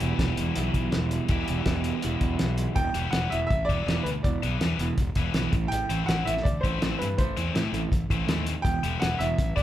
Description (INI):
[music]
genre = indie rock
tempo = 163 BPM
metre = 4/4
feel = straight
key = E minor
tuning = A4 = 439 Hz
[part]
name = cranked stack guitar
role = riff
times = 0.0-9.6 s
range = E3 to G4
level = -33 LUFS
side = left 8 dB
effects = overdrive
[part]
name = sludgy distorted guitar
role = riff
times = 0.0-9.6 s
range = E2 to E4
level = -33 LUFS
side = right 6 dB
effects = overdrive
[part]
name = fuzz fingered electric bass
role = bass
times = 0.0-9.6 s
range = E1 to A2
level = -29 LUFS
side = equal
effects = overdrive
[part]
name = cloth-damped thuddy drum kit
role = drums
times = 0.0-9.6 s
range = hi-hat, kick drum, snare drum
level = -28 LUFS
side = equal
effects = none
[part]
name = bright upright piano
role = melody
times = 2.8-9.6 s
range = B4 to G5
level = -30 LUFS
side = equal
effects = none
[part]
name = airy breathy pad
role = sustained chords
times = 9.1-9.6 s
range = G3 to E5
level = -48 LUFS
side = equal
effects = none
[sound]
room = light reverb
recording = band playing live in one room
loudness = -24 LUFS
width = side -12 dB against mid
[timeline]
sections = 0.0-2.8 A section; 2.8-9.6 B section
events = none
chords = 0.0 Em; 2.8 Em7; 5.5 Am; 8.7 Em7